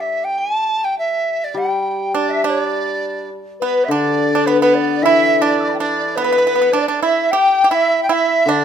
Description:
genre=chinese traditional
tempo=104 BPM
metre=2/4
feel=rubato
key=unclear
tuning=A4 = 439 Hz
part: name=large dizi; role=melody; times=0.0-8.6 s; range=B4 to A5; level=-18 LUFS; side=right 1 dB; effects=none
part: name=hammered dulcimer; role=accompaniment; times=1.5-8.6 s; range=D3 to G3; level=-21 LUFS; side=left 4 dB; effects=none
part: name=mellow hollow large dizi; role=second line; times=2.1-8.6 s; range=B4 to E6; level=-20 LUFS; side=left 6 dB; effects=none
part: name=pipa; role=second line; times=2.1-8.6 s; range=B3 to G4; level=-19 LUFS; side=right 8 dB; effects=none
room=light reverb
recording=close, detailed microphones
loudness=-14 LUFS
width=side -8 dB against mid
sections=0.0-2.7 A section; 2.7-8.6 B section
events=none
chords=none

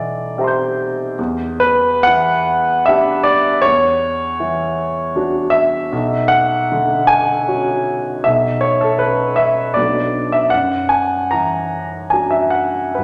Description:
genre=classical, impressionist solo piano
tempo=64-81 BPM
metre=3/4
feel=rubato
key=unclear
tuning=A4 = 438 Hz
part: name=warm grand piano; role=solo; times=0.0-13.0 s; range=B1 to G6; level=-16 LUFS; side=equal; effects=none
room=wet recital hall reverb, RT60 1.4 s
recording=none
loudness=-16 LUFS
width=mono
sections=0.0-13.0 A section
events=none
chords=0.0 C9/B; 1.2 Em7; 3.6 Dmaj9/E; 5.9 Bmadd9; 8.3 Aadd9/B; 9.8 Bm7; 10.5 F#aug7

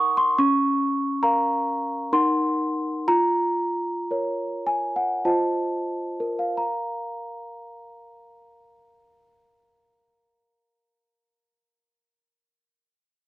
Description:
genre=classical, lullaby for celesta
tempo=44-73 BPM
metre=3/4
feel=straight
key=Bb minor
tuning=A4 = 440 Hz
part: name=celesta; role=solo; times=0.0-12.9 s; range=Db4 to Eb6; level=-22 LUFS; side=equal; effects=none
room=studio reverb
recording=dry, close 1970s-style studio recording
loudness=-21 LUFS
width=side -17 dB against mid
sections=0.0-6.6 A section; 6.6-10.7 B section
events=slowing down 0.0-6.6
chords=0.4 Bbm/Db; 2.1 Cm7b5/Eb; 3.1 Bbm/F; 5.3 F7; 6.6 Bb5

